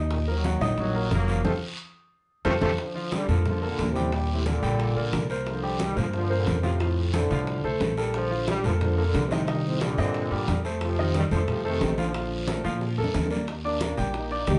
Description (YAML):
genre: latin, salsa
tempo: 179 BPM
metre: 4/4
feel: straight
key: Bb major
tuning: A4 = 438 Hz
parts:
  - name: warm grand piano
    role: accompaniment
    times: 0.0-14.6 s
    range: C3 to G6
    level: -32 LUFS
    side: equal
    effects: none
  - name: upright bass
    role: bass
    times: 0.0-14.6 s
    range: F1 to Bb2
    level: -30 LUFS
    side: equal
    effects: none
  - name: brilliant trombone section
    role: melody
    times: 0.1-14.6 s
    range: F2 to G4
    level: -32 LUFS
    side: equal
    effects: none
  - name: bongos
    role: percussion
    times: 0.1-14.6 s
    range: none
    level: -37 LUFS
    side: equal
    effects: none
  - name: congas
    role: percussion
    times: 0.1-14.6 s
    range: none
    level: -35 LUFS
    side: equal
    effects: none
  - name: guiro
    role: percussion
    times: 0.1-14.6 s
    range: none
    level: -42 LUFS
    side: equal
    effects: none
room: wet studio reverb, RT60 0.6 s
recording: heard from further back in the room, nothing above 11.0 kHz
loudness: -26 LUFS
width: mono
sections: 0.0-2.8 A section; 2.8-13.5 B section; 13.5-14.6 A section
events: band accent 1.4-2.8; drum fill 12.8-13.5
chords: 0.1 Ebmadd9; 1.4 F; 2.8 Bbmaj7; 4.1 Ebmaj7; 5.5 C7sus2; 6.8 F69; 8.1 Bbmaj7; 9.5 Cm7; 10.8 F7; 12.1 Bbmaj7; 13.5 Ebmaj7